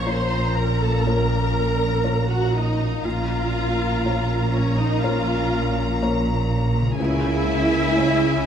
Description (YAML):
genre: cinematic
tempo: 61 BPM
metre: 4/4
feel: rubato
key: Bb minor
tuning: A4 = 440 Hz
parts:
  - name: warm symphonic violin section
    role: melody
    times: 0.0-8.5 s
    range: Ab5 to Bb5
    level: -31 LUFS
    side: left 3 dB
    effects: none
  - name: warm symphonic violin section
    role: second line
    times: 0.0-8.5 s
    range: Db5 to C6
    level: -30 LUFS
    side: left 3 dB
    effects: none
  - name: felt-muted upright piano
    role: accompaniment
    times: 0.0-8.5 s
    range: Db2 to Db5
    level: -30 LUFS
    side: left 3 dB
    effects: none
  - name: warm symphonic viola section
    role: accompaniment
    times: 0.0-8.5 s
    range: Db4 to C5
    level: -25 LUFS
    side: right 2 dB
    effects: none
  - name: mellow French horn section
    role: sustained chords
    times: 0.0-8.5 s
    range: Ab3 to Db4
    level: -30 LUFS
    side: left 4 dB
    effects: none
  - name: concert harp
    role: arpeggios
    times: 0.0-8.5 s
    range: Bb2 to Db5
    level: -32 LUFS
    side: left 8 dB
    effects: none
  - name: rich symphonic cello section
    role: bass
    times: 0.0-8.5 s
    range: Bb2 to Db3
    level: -26 LUFS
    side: right 2 dB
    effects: none
  - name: warm symphonic double bass section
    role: bass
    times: 0.0-8.5 s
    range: Bb1 to Db2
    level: -25 LUFS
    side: right 2 dB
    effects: none
room: moderate scoring stage reverb, RT60 1.6 s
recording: none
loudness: -19 LUFS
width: side -8 dB against mid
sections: 0.0-8.5 A section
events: none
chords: 0.0 Bbm; 7.0 Dbm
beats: 0.07 1.06 2.05 | 3.04 4.04 5.03 6.02 | 6.99 7.97